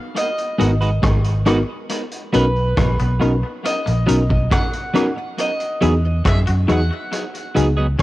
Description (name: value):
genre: lovers rock reggae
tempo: 69 BPM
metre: 4/4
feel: straight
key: unclear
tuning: A4 = 440 Hz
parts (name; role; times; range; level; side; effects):
- bowl-back mandolin; melody; 0.0-8.0 s; B4 to F#5; -25 LUFS; equal; cassette tape, tape echo
- vintage drum kit; drums; 0.2-8.0 s; hi-hat, kick drum, rim click; -22 LUFS; equal; cassette tape, tape echo
- tine electric piano; accompaniment; 0.6-7.7 s; B3 to A#4; -23 LUFS; left 2 dB; overdrive, fast stereo tremolo, cassette tape, tape echo
- twangy electric guitar; riff; 0.6-8.0 s; G#3 to F#4; -32 LUFS; left 4 dB; none
- twelve-string electric guitar; stabs; 0.6-7.9 s; F#3 to B4; -25 LUFS; right 2 dB; cassette tape, tape echo
- vintage muted fingered electric bass; bass; 0.6-8.0 s; G#1 to F#2; -18 LUFS; equal; none
room: light reverb, small room ambience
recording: home recording on cassette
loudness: -16 LUFS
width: side -17 dB against mid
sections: 0.0-8.0 A section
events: none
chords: 0.0 G#m7; 1.9 Bmaj7; 5.4 Emaj9; 7.1 C#9sus4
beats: 0.16 1.03 | 1.90 2.77 3.64 4.51 | 5.38 6.25 7.12 7.99